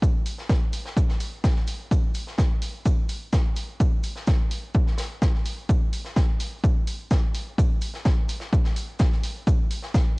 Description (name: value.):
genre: techno.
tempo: 127 BPM.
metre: 4/4.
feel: straight.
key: none.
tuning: none.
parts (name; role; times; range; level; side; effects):
electronic kick drum; drums; 0.0-10.0 s; none; -21 LUFS; equal; cassette tape.
shaker and snare drum; drums; 0.0-10.1 s; none; -38 LUFS; left 1 dB; high-pass filter on snare, cassette tape, high-pass filter on perc, high-pass filter on room.
electronic hi-hat; drums; 0.3-9.8 s; none; -36 LUFS; right 2 dB; sidechain pumping on hats, cassette tape.
room: little or no reverb.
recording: home recording on cassette.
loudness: -22 LUFS.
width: side -29 dB against mid.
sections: 0.0-10.2 A section.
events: none.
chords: none.